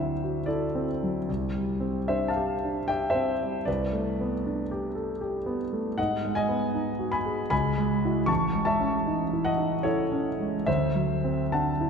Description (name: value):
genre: classical, impressionist solo piano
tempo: 77 BPM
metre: 3/4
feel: rubato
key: unclear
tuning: A4 = 441 Hz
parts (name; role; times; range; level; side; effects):
- warm concert grand piano; solo; 0.0-11.9 s; A1 to C#6; -25 LUFS; equal; none
room: wet church reverb, RT60 2.6 s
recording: recorded in a church or concert hall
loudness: -25 LUFS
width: side -6 dB against mid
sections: 0.0-11.9 A section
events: none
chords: 0.0 D9; 1.3 Cadd9; 3.7 Am11/C; 6.0 G#m7; 7.5 C#m7; 8.3 Amaj7#11; 10.7 D9